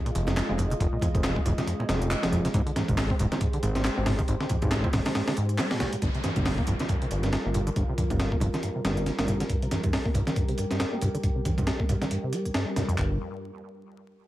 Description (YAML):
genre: breakbeat, breaks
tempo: 138 BPM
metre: 4/4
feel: swing 57% on 16ths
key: G phrygian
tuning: A4 = 440 Hz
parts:
  - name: dark analog pad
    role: sustained chords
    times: 0.0-13.2 s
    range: G3 to Eb5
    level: -34 LUFS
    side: equal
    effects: chorus, sidechain pumping
  - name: deep acid bass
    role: riff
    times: 0.1-13.2 s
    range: G1 to C4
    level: -30 LUFS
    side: equal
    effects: ping-pong delay
  - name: breakbeat sampler-style drum kit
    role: drums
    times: 0.1-13.1 s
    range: handclaps, hi-hat, kick drum, snare drum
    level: -28 LUFS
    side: equal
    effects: none
  - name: fat analog bass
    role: bass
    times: 0.2-9.4, 13.0-13.2 s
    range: Eb1 to Ab1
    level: -28 LUFS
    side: equal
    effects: none
  - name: garage drum kit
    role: drums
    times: 0.2-13.0 s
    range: handclaps, hi-hat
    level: -39 LUFS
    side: equal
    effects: none
  - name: bongos and congas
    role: percussion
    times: 0.3-12.9 s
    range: none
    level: -34 LUFS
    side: right 2 dB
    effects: none
  - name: downlifter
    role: sound effects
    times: 6.0-9.5 s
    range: none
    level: -38 LUFS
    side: equal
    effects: none
room: little or no reverb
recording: vinyl crackle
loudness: -24 LUFS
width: side -15 dB against mid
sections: 0.0-6.0 A section; 6.0-13.0 B section; 13.0-14.3 C section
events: drop 0.0-6.0; kick drops out 5.2-6.0; filter sweep on acid bass 6.0-13.0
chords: 0.0 Fm7; 2.5 Abmaj7; 6.0 Gm7